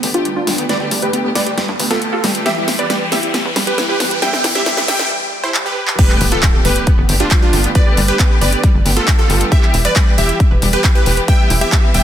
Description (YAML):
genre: uplifting trance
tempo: 136 BPM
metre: 4/4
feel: straight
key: unclear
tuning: A4 = 443 Hz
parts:
  - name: rich studio string section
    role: sustained chords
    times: 0.0-12.0 s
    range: D3 to G4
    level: -23 LUFS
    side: left 1 dB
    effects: sidechain pumping
  - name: tight sequencer bass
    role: bass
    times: 0.0-12.0 s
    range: E1 to G2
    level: -18 LUFS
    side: equal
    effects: sidechain pumping, high-pass filter
  - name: big-room dance drum kit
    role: drums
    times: 0.0-12.0 s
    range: crash cymbal, handclaps, hi-hat, snare drum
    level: -19 LUFS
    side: equal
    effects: sidechain pumping on hats, sidechain pumping on cymbals
  - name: riser, swell and impact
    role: sound effects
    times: 0.3-7.8 s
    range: none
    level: -24 LUFS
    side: equal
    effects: none
  - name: supersaw stab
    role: melody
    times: 0.1-12.0 s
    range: D4 to G5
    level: -20 LUFS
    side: right 1 dB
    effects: sidechain pumping, low-pass filter, digital delay
  - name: plucky unison lead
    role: second line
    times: 0.1-12.0 s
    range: F4 to G5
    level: -24 LUFS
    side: equal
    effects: lush chorus, sidechain pumping, digital delay
  - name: wide unison pluck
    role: arpeggios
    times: 0.1-12.0 s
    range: G3 to B4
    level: -24 LUFS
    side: right 2 dB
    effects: sidechain pumping, digital delay
  - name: electronic kick drum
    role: drums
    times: 6.0-11.8 s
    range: none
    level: -12 LUFS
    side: equal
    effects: none
room: light reverb, digital ambience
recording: dense, heavily limited modern master, high-pass filter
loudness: -12 LUFS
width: side -10 dB against mid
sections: 0.0-6.0 A section; 6.0-12.0 B section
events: build-up 0.0-6.0; drum fill 0.0-5.1, 5.5-6.0; filter sweep on supersaw synth 0.0-6.0; filter sweep on synth pluck 0.0-6.0; filter sweep on digital synth lead 0.0-6.0; filter sweep 0.0-6.0; riser 0.3-5.1; break 5.1-6.0; swell 5.1-6.0; drop 6.0-12.0; impact 6.0-7.8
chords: 0.0 Gadd9; 2.5 Em; 6.0 Gadd9; 9.5 Em